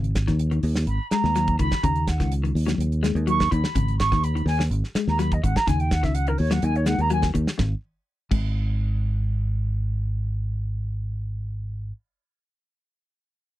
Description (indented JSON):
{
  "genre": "afrobeat",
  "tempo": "125 BPM",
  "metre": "4/4",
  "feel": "straight",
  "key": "G# minor",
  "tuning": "A4 = 439 Hz",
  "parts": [
    { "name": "clean electric guitar", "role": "arpeggios", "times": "0.0-8.4 s", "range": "G#2 to G#3", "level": "-28 LUFS", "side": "left 6 dB", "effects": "lush chorus" },
    { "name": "fingered electric bass", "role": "bass", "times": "0.0-11.9 s", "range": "G#1 to D#2", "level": "-23 LUFS", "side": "equal", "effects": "none" },
    { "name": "damped 70s drum kit", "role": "drums", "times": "0.0-8.4 s", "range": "crash cymbal, hi-hat, kick drum, snare drum", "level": "-27 LUFS", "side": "equal", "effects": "none" },
    { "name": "mellow silver concert flute", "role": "melody", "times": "0.9-7.3 s", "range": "A#4 to C#6", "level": "-26 LUFS", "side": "right 2 dB", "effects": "none" }
  ],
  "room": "little or no reverb",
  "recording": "dry, close 1970s-style studio recording",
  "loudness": "-21 LUFS",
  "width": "side -15 dB against mid",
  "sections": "0.0-7.6 A section; 7.6-11.4 B section",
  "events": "flute solo 0.0-7.6",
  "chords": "0.0 G#sus2; 1.8 D#m7; 3.8 G#5; 5.7 D#m7; 7.6 N.C.",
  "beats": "0.40 0.88 1.36 | 1.84 2.32 2.80 3.28 | 3.76 4.24 4.72 5.20 | 5.67 6.15 6.63 7.11 | 7.59 8.07 8.55 9.03 | 9.51 9.99 10.47 10.95"
}